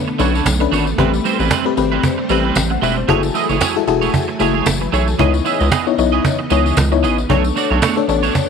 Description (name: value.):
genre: early-eighties boogie funk.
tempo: 114 BPM.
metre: 4/4.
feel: swing 56% on 16ths.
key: C# phrygian.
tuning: A4 = 440 Hz.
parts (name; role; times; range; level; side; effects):
FM electric piano; accompaniment; 0.0-8.5 s; G#3 to G5; -19 LUFS; left 13 dB; chorus.
string machine, full ensemble; sustained chords; 0.0-8.5 s; C#3 to G#5; -24 LUFS; right 1 dB; ensemble chorus.
electric guitar at the edge of break-up; riff; 0.1-8.4 s; G3 to E5; -20 LUFS; right 14 dB; analog chorus.
rubbery square bass; bass; 0.2-8.3 s; E1 to C#2; -18 LUFS; equal; none.
cajon; drums; 0.2-8.5 s; none; -18 LUFS; right 4 dB; none.
tambourine; percussion; 0.2-8.5 s; none; -29 LUFS; left 13 dB; none.
room: light reverb, small room reverb.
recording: 1960s-style stereo with parts hard left and right.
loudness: -14 LUFS.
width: side -6 dB against mid.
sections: 0.0-8.5 A section.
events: none.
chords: 0.0 Bm9; 1.0 Am9; 3.1 F#m9; 5.2 C#m9; 7.3 Bm9.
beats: 0.46 | 0.98 1.51 2.04 2.56 | 3.09 3.62 4.14 4.67 | 5.19 5.72 6.25 6.77 | 7.30 7.83 8.35.